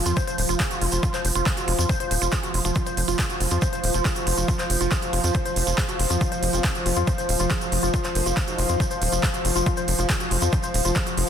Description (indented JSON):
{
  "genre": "psychedelic trance",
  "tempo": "139 BPM",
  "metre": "4/4",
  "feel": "straight",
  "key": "unclear",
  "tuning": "A4 = 440 Hz",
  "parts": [
    { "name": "evolving wavetable pad", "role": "sustained chords", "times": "0.0-11.3 s", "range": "F3", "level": "-31 LUFS", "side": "right 4 dB", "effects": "ensemble chorus, built-in reverb, vintage 12-bit sampler grit, sidechain pumping" },
    { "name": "tight sequencer bass", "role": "bass", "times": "0.0-11.2 s", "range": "Eb1 to F2", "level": "-24 LUFS", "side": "equal", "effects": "tube saturation" },
    { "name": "warbly tape-like pad", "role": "texture", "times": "0.0-11.3 s", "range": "F4 to F5", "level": "-30 LUFS", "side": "left 2 dB", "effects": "chorus, built-in reverb, sidechain pumping" },
    { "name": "woody wave-folded pluck", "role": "riff", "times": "0.1-11.2 s", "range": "F4 to C5", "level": "-29 LUFS", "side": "moving between left 9 dB and right 4 dB", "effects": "chorus, auto-pan, sidechain pumping, dub echo" },
    { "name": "big-room dance drum kit", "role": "drums", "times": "0.1-11.3 s", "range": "handclaps, hi-hat", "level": "-28 LUFS", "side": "right 2 dB", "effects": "overdrive" },
    { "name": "tube shaker", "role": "percussion", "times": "0.1-11.2 s", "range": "none", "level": "-33 LUFS", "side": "right 5 dB", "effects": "none" },
    { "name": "electronic kick drum", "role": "drums", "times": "0.2-11.0 s", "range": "none", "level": "-25 LUFS", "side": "equal", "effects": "overdrive" },
    { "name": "formant-sweep wobble bass", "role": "second line", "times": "6.5-8.8 s", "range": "Bb3 to Eb4", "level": "-41 LUFS", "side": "equal", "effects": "none" }
  ],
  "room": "light reverb, digital ambience",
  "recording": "dense, heavily limited modern master",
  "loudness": "-20 LUFS",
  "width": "side -8 dB against mid",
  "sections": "0.0-11.3 A section",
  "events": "none",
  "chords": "0.0 F5",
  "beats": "0.17 0.60 | 1.03 1.46 1.89 2.33 | 2.76 3.19 3.62 4.05 | 4.48 4.92 5.35 5.78 | 6.21 6.64 7.07 7.51 | 7.94 8.37 8.80 9.23 | 9.66 10.10 10.53 10.96"
}